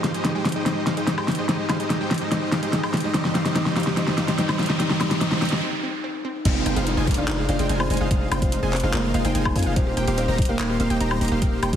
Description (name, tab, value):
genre	future bass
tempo	145 BPM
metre	4/4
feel	half-time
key	unclear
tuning	A4 = 439 Hz
part	buzzing kalimba	melody	0.0-11.8 s	G3 to F5	-28 LUFS	left 1 dB	sidechain pumping, ping-pong delay
part	wide unison pluck	arpeggios	0.0-11.8 s	C4 to Ab4	-36 LUFS	right 1 dB	none
part	dense compressed supersaw	riff	0.0-11.8 s	G3 to Bb5	-27 LUFS	equal	sidechain pumping
part	pop drum kit	drums	0.0-11.8 s	crash cymbal, handclaps, hi-hat, snare drum, woodblock	-24 LUFS	equal	overdrive
part	riser, noise sweep and downlifter	sound effects	0.0-9.8 s	none	-32 LUFS	right 2 dB	none
part	wide unison pluck	arpeggios	6.5-11.8 s	F5 to Bb5	-34 LUFS	equal	sidechain pumping, ping-pong delay
part	long sustained 808-style bass	bass	6.5-11.8 s	Eb1 to F2	-25 LUFS	equal	sidechain pumping
part	electronic kick drum	drums	6.5-11.8 s	none	-22 LUFS	equal	overdrive
room	moderate digital room reverb, RT60 1.1 s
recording	heavily compressed radio sound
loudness	-20 LUFS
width	side -9 dB against mid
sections	0.0-6.5 A section; 6.5-11.8 B section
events	build-up 0.0-6.5; drum fill 0.0-5.6; riser 0.0-5.6; noise sweep 4.8-6.5; break 5.6-6.5; drop 6.5-11.8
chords	0.0 Abmaj7; 3.1 Cm; 6.5 Fm7; 9.8 Eb69